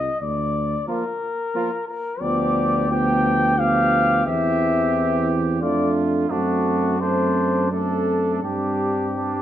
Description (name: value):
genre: classical, brass quintet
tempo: 83-91 BPM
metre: 3/4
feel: rubato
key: unclear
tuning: A4 = 439 Hz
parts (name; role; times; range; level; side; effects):
- dark cornet; melody; 0.0-9.4 s; F#4 to G5; -23 LUFS; left 4 dB; none
- mellow tuba; bass; 0.0-9.4 s; D2 to G2; -25 LUFS; right 3 dB; none
- mellow trumpet; second line; 0.9-9.4 s; D4 to G4; -28 LUFS; right 7 dB; none
- dark French horn; accompaniment; 0.9-9.4 s; Bb3 to D4; -25 LUFS; left 1 dB; none
- warm trombone; accompaniment; 0.9-9.4 s; E3 to A3; -27 LUFS; right 4 dB; none
room: moderate recital hall reverb, RT60 1.2 s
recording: none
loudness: -19 LUFS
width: side -11 dB against mid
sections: 0.0-9.4 A section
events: none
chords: 0.2 Bb/D; 2.2 G7/D; 4.3 C/E; 5.6 Dm/F; 6.3 D7/F#; 8.4 Gsus4